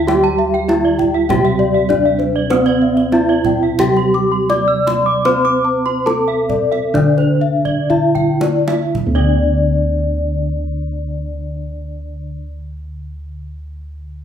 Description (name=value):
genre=Balinese gamelan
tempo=54-99 BPM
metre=4/4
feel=straight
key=D slendro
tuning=A4 = 441 Hz
part: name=gamelan-type bronze metallophone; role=melody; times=0.0-12.5 s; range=C4-45c to D5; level=-17 LUFS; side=right 1 dB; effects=none
part: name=gamelan-type bronze metallophone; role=accompaniment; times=0.0-12.5 s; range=D3 to C4-45c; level=-25 LUFS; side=right 5 dB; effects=none
part: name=gamelan-type bronze metallophone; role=arpeggios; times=0.0-12.5 s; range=C5-45c to E6+30c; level=-23 LUFS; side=right 4 dB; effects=none
part: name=gamelan-type bossed gongs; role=bass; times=0.0-12.4 s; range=D2 to C5-45c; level=-20 LUFS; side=equal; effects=none
part: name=gamelan-type bronze metallophone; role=arpeggios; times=0.1-12.5 s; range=C5-45c to D6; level=-20 LUFS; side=left 7 dB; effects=none
part: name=kendang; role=percussion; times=0.1-9.5 s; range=none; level=-26 LUFS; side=right 2 dB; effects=none
room=wet large studio reverb, RT60 1.2 s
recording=band playing live in one room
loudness=-13 LUFS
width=side -8 dB against mid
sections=0.0-9.0 A section; 9.0-13.4 B section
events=slowing down 2.5-9.0; drum fill 7.7-9.0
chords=none